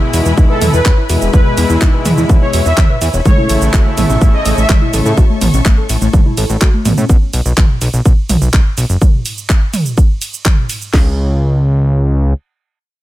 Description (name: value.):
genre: melodic techno.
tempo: 125 BPM.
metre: 4/4.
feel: straight.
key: unclear.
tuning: A4 = 437 Hz.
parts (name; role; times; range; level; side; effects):
warm symphonic string section; sustained chords; 0.0-7.1 s; E4 to C#6; -26 LUFS; left 1 dB; sidechain pumping.
soft round pluck; arpeggios; 0.0-7.1 s; G#3 to E5; -21 LUFS; equal; chorus, sidechain pumping, ping-pong delay.
brassy analog pad; stabs; 0.0-5.1 s; B2 to E4; -19 LUFS; left 2 dB; chorus, sidechain pumping, ping-pong delay.
fat analog bass; bass; 0.1-12.3 s; E1 to A2; -14 LUFS; equal; sidechain pumping.
house drum kit; drums; 0.1-10.9 s; handclaps, hi-hat, ride cymbal, shaker, toms; -18 LUFS; right 2 dB; none.
house drum kit; drums; 0.4-11.0 s; crash cymbal, kick drum, snare drum; -10 LUFS; equal; none.
soft supersaw; melody; 0.5-4.8 s; A4 to E5; -20 LUFS; equal; sidechain pumping, ping-pong delay.
room: little or no reverb.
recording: none.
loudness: -10 LUFS.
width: side -15 dB against mid.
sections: 0.0-10.9 A section; 10.9-13.0 B section.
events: drop 0.0-10.9.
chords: 0.0 E; 3.3 A; 7.1 B5; 10.9 N.C..